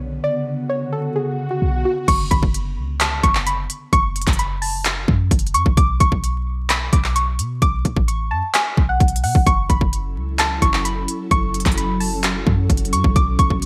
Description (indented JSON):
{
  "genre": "hip hop, trap",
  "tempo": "130 BPM",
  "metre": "4/4",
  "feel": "half-time",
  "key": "F# minor",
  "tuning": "A4 = 440 Hz",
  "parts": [
    { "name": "ethereal airy pad", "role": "sustained chords", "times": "0.0-2.0, 10.1-13.7 s", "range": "C#3 to A4", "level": "-29 LUFS", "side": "equal", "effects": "ensemble chorus, built-in reverb" },
    { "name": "clean 808-style bass", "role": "bass", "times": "0.0-13.7 s", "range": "F#1 to B2", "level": "-23 LUFS", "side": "equal", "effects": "none" },
    { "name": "swell", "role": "sound effects", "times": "0.4-2.1 s", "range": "none", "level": "-36 LUFS", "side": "equal", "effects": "none" },
    { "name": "soft round pluck", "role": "melody", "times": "0.2-13.7 s", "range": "F#4 to D6", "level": "-24 LUFS", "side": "equal", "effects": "chorus, digital delay" },
    { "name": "trap drum kit", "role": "drums", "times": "2.1-13.7 s", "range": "crash cymbal, handclaps, hi-hat, kick drum", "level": "-21 LUFS", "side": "equal", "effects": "overdrive, gated reverb" }
  ],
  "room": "light reverb, digital ambience",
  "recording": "bright 1980s-style digital production, vinyl crackle",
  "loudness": "-19 LUFS",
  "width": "mono",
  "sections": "0.0-2.1 A section; 2.1-13.7 B section",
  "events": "swell 0.4-2.1",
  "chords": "0.0 Bmadd9; 2.1 F#m; 5.8 Bmadd9; 9.5 F#m7",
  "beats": "| 0.23 0.70 1.16 1.62 | 2.08 2.54 3.00 3.46 | 3.93 4.39 4.85 5.31 | 5.77 6.24 6.70 7.16 | 7.62 8.08 8.54 9.00 | 9.46 9.93 10.39 10.85 | 11.31 11.77 12.23 12.70 | 13.16 13.62"
}